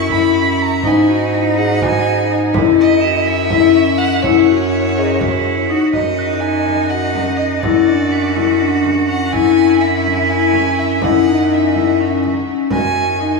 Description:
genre	contemporary instrumental, chamber music in an uneven meter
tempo	248 BPM (eighths)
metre	7/8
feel	straight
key	F# mixolydian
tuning	A4 = 438 Hz
part	rich violin	melody	0.0-13.4 s	C#5 to C#6	-21 LUFS	right 2 dB	none
part	bright cello	second line	0.0-13.4 s	C#4 to F#4	-21 LUFS	right 3 dB	none
part	warm bass clarinet	bass	0.0-13.4 s	F#2 to G#2	-20 LUFS	right 2 dB	none
part	vibraphone with medium mallets	arpeggios	0.1-13.4 s	C#4 to G#4	-15 LUFS	left 6 dB	none
part	frame drum	percussion	0.1-12.9 s	none	-27 LUFS	right 4 dB	none
part	crotales	texture	3.0-8.9, 12.7-13.4 s	F#6 to E7	-27 LUFS	right 4 dB	none
room	wet huge ambient reverb, RT60 7.5 s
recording	in a vast, echoing space, studio ambience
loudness	-12 LUFS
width	side -2 dB against mid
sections	0.0-5.9 A section; 5.9-13.4 B section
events	none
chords	0.0 F#7sus4; 0.8 G#5; 2.5 F#5; 5.9 D#m7/F#; 7.6 D/F#; 9.3 C#m/F#; 11.0 F#5; 12.7 D#m7/F#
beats	0.11 0.35 0.60 | 0.84 1.09 1.33 1.57 1.82 2.06 2.30 | 2.55 2.79 3.03 3.27 3.52 3.76 4.00 | 4.25 4.49 4.73 4.97 5.22 5.46 5.70 | 5.94 6.19 6.43 6.67 6.91 7.16 7.40 | 7.64 7.88 8.12 8.37 8.61 8.85 9.09 | 9.34 9.58 9.82 10.06 10.30 10.54 10.79 | 11.03 11.27 11.51 11.75 11.99 12.23 12.48 | 12.72 12.96 13.20

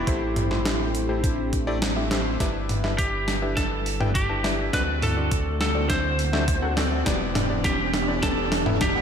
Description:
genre	synthwave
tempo	103 BPM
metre	4/4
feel	straight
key	unclear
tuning	A4 = 442 Hz
part	lightly driven lead guitar	melody	0.0-9.0 s	E4 to C5	-28 LUFS	equal	slapback echo, digital delay
part	warm analog pad	sustained chords	0.0-9.0 s	D3 to F#5	-33 LUFS	right 1 dB	chorus, sidechain pumping
part	clear electric grand piano	stabs	0.0-9.0 s	A3 to A5	-30 LUFS	left 3 dB	slapback echo
part	round analog bass	bass	0.0-9.0 s	E1 to D2	-29 LUFS	equal	tube saturation
part	clean 12-bit digital drum machine	drums	0.1-8.9 s	hi-hat, snare drum, toms	-27 LUFS	equal	overdrive
part	electronic kick drum	drums	0.1-8.9 s	none	-27 LUFS	equal	overdrive
part	riser	sound effects	5.4-9.0 s	none	-34 LUFS	equal	slapback echo
room	moderate concert hall reverb, RT60 2.1 s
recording	big arena sound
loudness	-21 LUFS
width	side -7 dB against mid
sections	0.0-2.4 A section; 2.4-9.0 B section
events	kick drops out 1.8-2.4; drum fill 2.1, 2.4-9.0; riser 5.4-9.0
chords	0.1 Am7; 2.4 G6; 4.7 D7; 7.1 Em7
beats	| 0.07 0.65 1.24 1.82 | 2.40 2.98 3.57 4.15 | 4.73 5.31 5.90 6.48 | 7.06 7.64 8.23 8.81

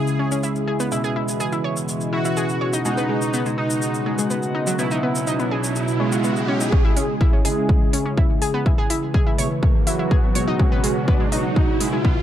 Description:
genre	melodic techno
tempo	124 BPM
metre	4/4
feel	straight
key	C# minor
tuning	A4 = 440 Hz
part	soft supersaw	melody	0.0-12.0 s	F#3 to G#4	-27 LUFS	right 2 dB	sidechain pumping, low-pass filter, digital delay
part	dark analog pad	sustained chords	0.0-12.2 s	B2 to B4	-28 LUFS	left 1 dB	chorus, phaser, sidechain pumping
part	sync-sweep polysynth	stabs	0.0-12.2 s	B2 to F#4	-26 LUFS	right 2 dB	chorus, sidechain pumping, tape echo
part	analog drone	drone	0.5-12.2 s	C#3	-32 LUFS	left 1 dB	none
part	electronic shaker and hi-hat	drums	0.1-11.9 s	none	-29 LUFS	equal	none
part	analog pluck	arpeggios	0.2-12.1 s	F#3 to C#5	-26 LUFS	left 1 dB	chorus, cassette tape, sidechain pumping, tape echo
part	riser	sound effects	4.0-12.2 s	none	-30 LUFS	right 2 dB	none
part	electronic kick drum	drums	6.7-12.1 s	none	-18 LUFS	equal	none
room	little or no reverb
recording	dark, warm production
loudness	-18 LUFS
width	side -11 dB against mid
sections	0.0-6.7 A section; 6.7-12.2 B section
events	filter sweep on analog polysynth 0.0-6.7, 6.7-12.2; riser 4.0-6.7, 6.7-12.2; build-up 6.7-12.2; filter sweep on supersaw synth 6.7-12.2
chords	0.0 C#m; 0.9 E; 2.9 G#m7; 4.8 Bsus4; 6.7 C#m; 8.7 E; 10.6 G#m7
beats	0.43 | 0.92 1.40 1.89 2.37 | 2.85 3.34 3.82 4.30 | 4.79 5.27 5.76 6.24 | 6.72 7.21 7.69 8.18 | 8.66 9.14 9.63 10.11 | 10.60 11.08 11.56 12.05

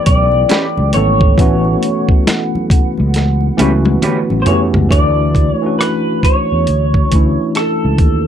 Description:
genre	R&B, neo-soul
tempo	68 BPM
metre	4/4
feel	swing 62% on 16ths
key	unclear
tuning	A4 = 441 Hz
part	electric guitar through a small old amp	melody	0.0-8.3 s	A4 to D5	-17 LUFS	equal	wide subtle chorus, slapback echo
part	tine electric piano	accompaniment	0.0-8.3 s	E3 to A4	-17 LUFS	left 1 dB	medium stereo tremolo, plate reverb
part	mellow hollow large flute ensemble	sustained chords	0.0-4.9 s	E4 to G5	-25 LUFS	right 1 dB	plate reverb
part	sustaining fretless electric bass	bass	0.1-8.3 s	G#1 to E2	-15 LUFS	equal	analog chorus
part	dusty soul sampler-style drum kit	drums	0.1-8.2 s	hi-hat, kick drum, rim click, snare drum, toms	-14 LUFS	equal	none
part	congas	percussion	0.3-4.7 s	none	-26 LUFS	right 1 dB	none
part	electric guitar through a small old amp	second line	0.5-4.2 s	C#4 to B4	-20 LUFS	right 5 dB	plate reverb
room	light reverb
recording	dark, warm production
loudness	-11 LUFS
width	side -9 dB against mid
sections	0.0-4.9 A section; 4.9-8.3 B section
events	drum fill 3.1-4.9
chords	0.0 A9; 4.9 Dmaj9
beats	0.49 | 1.38 2.26 3.14 4.02 | 4.91 5.79 6.67 7.55

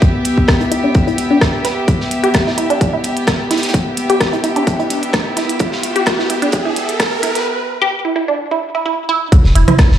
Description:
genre	minimal techno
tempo	129 BPM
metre	4/4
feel	swing 53% on 16ths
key	E minor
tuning	A4 = 440 Hz
part	electronic kick drum	drums	0.0-9.9 s	none	-13 LUFS	equal	overdrive
part	modern studio drum kit	drums	0.0-10.0 s	hi-hat, snare drum	-27 LUFS	right 2 dB	sidechain pumping on hats, high-pass filter on hats, high-pass filter on snare, high-pass filter on room
part	dark studio string section	texture	0.0-7.5 s	B3 to E5	-20 LUFS	left 1 dB	sidechain pumping
part	minimal click drum kit	drums	0.3-9.9 s	hi-hat, rim click	-21 LUFS	left 1 dB	overdrive
part	resonant blip pluck	riff	0.6-9.7 s	D4 to B4	-18 LUFS	right 1 dB	chorus, phaser, sidechain pumping, tape echo
part	riser	sound effects	2.5-7.5 s	none	-22 LUFS	right 1 dB	none
part	booming analog drum machine	percussion	9.3-9.8 s	congas, rim click, toms	-16 LUFS	right 1 dB	overdrive
part	punchy sub bass	bass	9.4-10.0 s	E1 to F#1	-10 LUFS	equal	tube saturation, sidechain pumping
room	moderate digital room reverb, RT60 1.1 s, small room ambience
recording	played on a big sound system in a bare room, large studio reverb, high-pass filter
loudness	-13 LUFS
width	side -10 dB against mid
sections	0.0-9.3 A section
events	build-up 0.0-9.3; filter sweep on synth arpeggio sound 0.0-9.3; filter sweep 0.0-9.3; riser 2.5-7.5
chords	0.0 Em; 9.3 E5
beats	| 0.02 0.48 0.95 1.42 | 1.88 2.35 2.81 3.27 | 3.74 4.21 4.67 5.14 | 5.60 6.07 6.53 7.00 | 7.46 7.93 8.39 8.86 | 9.32 9.79

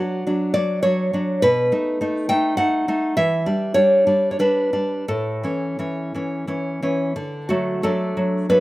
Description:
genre	romantic piece for solo classical guitar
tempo	83-105 BPM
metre	3/4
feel	rubato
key	D major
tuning	A4 = 440 Hz
part	nylon-string guitar	solo	0.0-8.6 s	A2 to G5	-18 LUFS	equal	none
room	little or no reverb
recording	recorded outdoors, with no room sound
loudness	-18 LUFS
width	side -18 dB against mid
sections	0.0-7.2 A section; 7.2-8.6 B section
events	none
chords	0.0 Bm (rootless); 1.4 B7; 3.2 Em7; 5.1 A; 7.2 D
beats	0.27 0.85 | 1.43 2.00 2.57 | 3.16 3.75 4.39 | 5.07 5.79 6.48 | 7.16 7.83 8.48

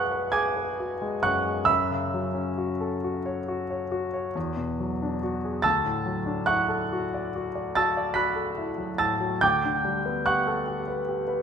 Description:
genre	classical, impressionist solo piano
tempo	44-50 BPM (dotted quarters)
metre	9/8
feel	rubato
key	unclear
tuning	A4 = 439 Hz
part	warm concert grand piano	solo	0.0-11.4 s	B1 to B6	-24 LUFS	equal	none
room	moderate scoring stage reverb, RT60 2.0 s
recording	minimal, uncompressed stereo recording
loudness	-24 LUFS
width	side -7 dB against mid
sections	0.0-11.4 A section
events	none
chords	0.0 Bm6; 1.7 F#m7; 4.4 E9; 5.7 Dadd9; 9.4 Gmaj9/D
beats	0.35 | 1.69 3.03 4.35 | 5.65 6.92 8.17 | 9.41 10.68

